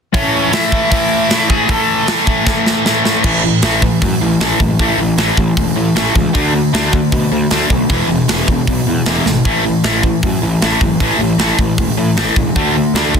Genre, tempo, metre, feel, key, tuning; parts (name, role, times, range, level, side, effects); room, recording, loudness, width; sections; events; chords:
punk rock; 154 BPM; 4/4; straight; A major; A4 = 445 Hz
biting lead guitar; melody; 0.1-2.1 s; C#4 to A5; -17 LUFS; equal; overdrive
sludgy distorted guitar; riff; 0.1-13.2 s; E2 to D4; -14 LUFS; left 1 dB; overdrive
tight metal drum kit; drums; 0.1-13.2 s; crash cymbal, hi-hat, kick drum, snare drum; -17 LUFS; equal
fuzz picked electric bass; bass; 3.2-13.2 s; E1 to B2; -19 LUFS; equal; overdrive
little or no reverb; dense, heavily limited modern master; -11 LUFS; side -6 dB against mid
0.1-3.2 A section; 3.2-13.2 B section
drum fill 2.5-3.2, 9.3
0.1 A; 3.2 A5; 6.3 D5; 7.9 E5; 9.5 A5; 12.6 D5